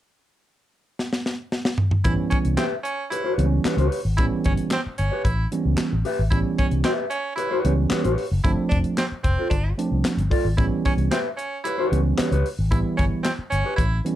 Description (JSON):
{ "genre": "funk", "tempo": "113 BPM", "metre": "4/4", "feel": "straight", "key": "A mixolydian", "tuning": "A4 = 442 Hz", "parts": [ { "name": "tight funk drum kit", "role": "drums", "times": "1.0-14.2 s", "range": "handclaps, hi-hat, kick drum, snare drum, toms", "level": "-24 LUFS", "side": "left 1 dB", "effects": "none" }, { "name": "edgy baritone saxophone", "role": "second line", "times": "2.0-14.0 s", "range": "C4 to E4", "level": "-28 LUFS", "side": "right 2 dB", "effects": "none" }, { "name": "mellow tine electric piano", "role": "stabs", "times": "2.0-14.2 s", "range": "E3 to E4", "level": "-25 LUFS", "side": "right 4 dB", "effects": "overdrive" }, { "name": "fingered electric bass with an envelope filter", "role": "bass", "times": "2.1-14.0 s", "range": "F1 to C#2", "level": "-22 LUFS", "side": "equal", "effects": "none" }, { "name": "mellow electric guitar", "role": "accompaniment", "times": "2.6-13.8 s", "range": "F4 to E5", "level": "-25 LUFS", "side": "left 2 dB", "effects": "none" } ], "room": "light reverb", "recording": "dark, warm production", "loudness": "-20 LUFS", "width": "side -13 dB against mid", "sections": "0.0-2.1 A section; 2.1-14.2 B section", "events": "drum fill 1.0-2.1", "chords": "0.0 N.C.; 2.1 A9 (rootless); 8.4 G9sus4; 10.6 A9 (rootless)" }